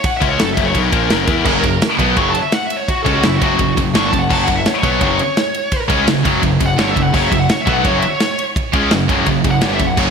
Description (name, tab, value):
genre	heavy metal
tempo	169 BPM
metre	4/4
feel	straight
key	F# phrygian dominant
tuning	A4 = 439 Hz
part	high-gain lead guitar	melody	0.0-10.1 s	E4 to C#6	-19 LUFS	equal	distortion
part	modern studio drum kit	drums	0.0-10.1 s	crash cymbal, kick drum, ride cymbal, snare drum	-18 LUFS	right 1 dB	none
part	high-gain distorted guitar	riff	0.2-10.1 s	F#2 to E4	-19 LUFS	left 10 dB	distortion
part	fuzz picked electric bass	bass	0.2-10.1 s	F#1 to E2	-22 LUFS	equal	overdrive
part	high-gain distorted guitar	riff	1.4-10.1 s	F#2 to C#4	-22 LUFS	equal	distortion
part	scooped high-gain guitar	riff	1.4-10.1 s	F#2 to C#4	-21 LUFS	right 10 dB	distortion
room	moderate lush hall reverb, RT60 1.6 s, studio reverb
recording	bright 1980s-style digital production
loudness	-13 LUFS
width	side -6 dB against mid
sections	0.0-10.1 A section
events	lead electric guitar solo 0.0-10.1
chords	0.0 F#5